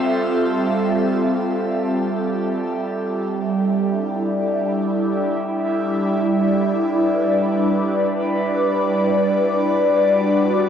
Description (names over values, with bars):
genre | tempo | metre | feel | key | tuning
ambient | free time | none | none | unclear | A4 = 440 Hz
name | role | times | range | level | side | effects
airy breathy pad | sustained chords | 0.0-10.7 s | G3 to E5 | -17 LUFS | equal | chorus, phaser, shimmer reverb
drifting glass-harmonics texture | texture | 0.0-3.3 s | E6 | -45 LUFS | right 1 dB | none
room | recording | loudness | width
wet cathedral reverb, RT60 5.8 s | worn, warbling old tape, cassette tape, warbly pitch drift | -17 LUFS | side -8 dB against mid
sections
0.0-3.3 A section; 3.3-10.7 B section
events
fade-out on synth texture 0.0-3.3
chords
0.0 Fmaj9; 3.3 A7sus4; 6.5 Em7; 9.6 Gmaj7